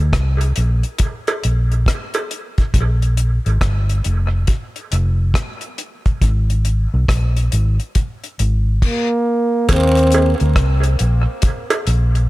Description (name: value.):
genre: dub reggae.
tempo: 69 BPM.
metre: 4/4.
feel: swing 63% on 16ths.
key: unclear.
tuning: A4 = 445 Hz.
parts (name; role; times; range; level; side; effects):
vintage muted fingered electric bass; bass; 0.0-12.3 s; F1 to Eb2; -15 LUFS; equal; none.
deep reggae drum kit; drums; 0.1-12.3 s; crash cymbal, hi-hat, kick drum, rim click; -19 LUFS; equal; none.
cowbell and jawbone-type rattle; percussion; 1.3-2.3, 9.7-11.9 s; none; -25 LUFS; right 3 dB; high-pass filter on perc, dub echo.
breathy trombone; melody; 8.8-10.3 s; Bb3 to C4; -18 LUFS; equal; low-pass filter, dub echo.
room: small room reverb.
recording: none.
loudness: -15 LUFS.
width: side -18 dB against mid.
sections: 0.0-9.7 A section; 9.7-12.3 B section.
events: break 0.0-2.7; filter sweep on trombone 0.0-9.7; filter sweep on drum 0.0-9.7; part muted 2.7-9.7.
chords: 0.0 N.C.; 2.7 Bb5; 6.2 N.C.; 9.7 Eb5.